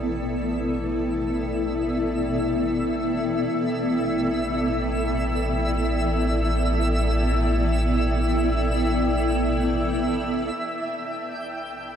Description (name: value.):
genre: ambient.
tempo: free time.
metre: none.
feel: none.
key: unclear.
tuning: A4 = 442 Hz.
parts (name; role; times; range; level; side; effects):
granular cloud pad; sustained chords; 0.0-12.0 s; B3 to G5; -24 LUFS; equal; built-in reverb.
warm sub bass; bass; 0.0-12.0 s; A1; -27 LUFS; equal; none.
twinkling granular texture; texture; 0.0-12.0 s; E5 to G6; -30 LUFS; equal; built-in reverb.
room: wet shimmer reverb, RT60 6.5 s.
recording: dark, warm production.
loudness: -22 LUFS.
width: side -8 dB against mid.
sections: 0.0-10.5 A section; 10.5-12.0 B section.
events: fade-in on sub bass 0.0-10.5; fade-in on synth texture 0.0-10.5.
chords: 0.0 A9sus4.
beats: free time.